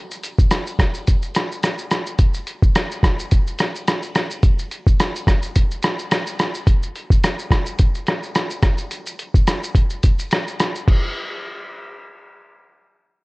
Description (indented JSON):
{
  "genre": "indie pop",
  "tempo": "107 BPM",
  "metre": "4/4",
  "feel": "swing 55% on 16ths",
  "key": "none",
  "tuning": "none",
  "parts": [
    { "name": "lo-fi sampler-style drum kit", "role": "drums", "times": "0.1-11.0 s", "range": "crash cymbal, hi-hat, kick drum, rim click, shaker", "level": "-17 LUFS", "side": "equal", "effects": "none" }
  ],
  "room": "light reverb",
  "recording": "worn, warbling old tape, cassette tape, warbly pitch drift",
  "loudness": "-17 LUFS",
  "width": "side -25 dB against mid",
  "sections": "0.0-11.2 A section; 11.2-13.2 B section",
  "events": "none",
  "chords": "none",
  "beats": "0.51 1.07 1.63 | 2.19 2.75 3.31 3.87 | 4.43 4.99 5.55 6.11 | 6.67 7.23 7.79 8.35 | 8.91 9.47 10.03 10.59"
}